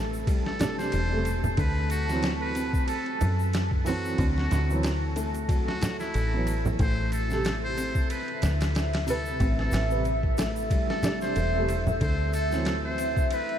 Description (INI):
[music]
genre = trip hop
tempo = 92 BPM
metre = 4/4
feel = swing 56% on 16ths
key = A dorian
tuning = A4 = 438 Hz
[part]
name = deep dark ambient pad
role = sustained chords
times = 0.0-13.6 s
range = E5 to A5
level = -34 LUFS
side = right 1 dB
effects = chorus, built-in reverb
[part]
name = felt-muted upright piano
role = arpeggios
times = 0.0-13.6 s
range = F#3 to A4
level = -35 LUFS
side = left 3 dB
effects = vintage 12-bit sampler grit, tape echo
[part]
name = deep dub fingered electric bass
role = bass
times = 0.0-13.3 s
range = E1 to F#2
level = -29 LUFS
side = equal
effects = none
[part]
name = egg shaker and congas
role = percussion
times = 0.1-13.5 s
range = none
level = -34 LUFS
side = right 2 dB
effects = none
[part]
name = boom bap sampler-style drum kit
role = drums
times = 0.3-13.6 s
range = hi-hat, kick drum, ride cymbal, snare drum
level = -30 LUFS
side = equal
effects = studio reverb
[part]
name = trumpet with metal mute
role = melody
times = 0.5-13.6 s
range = E4 to C5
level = -34 LUFS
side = equal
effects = tape echo
[part]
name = dark upright piano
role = accompaniment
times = 0.6-13.6 s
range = C3 to B4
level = -33 LUFS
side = right 2 dB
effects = tremolo, tape echo
[sound]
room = moderate huge ambient reverb, RT60 8.6 s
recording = dreamy mix soaked in reverb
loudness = -24 LUFS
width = side -10 dB against mid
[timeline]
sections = 0.0-13.6 A section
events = none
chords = 0.0 Am7; 1.6 D7; 6.8 Am7; 12.0 D7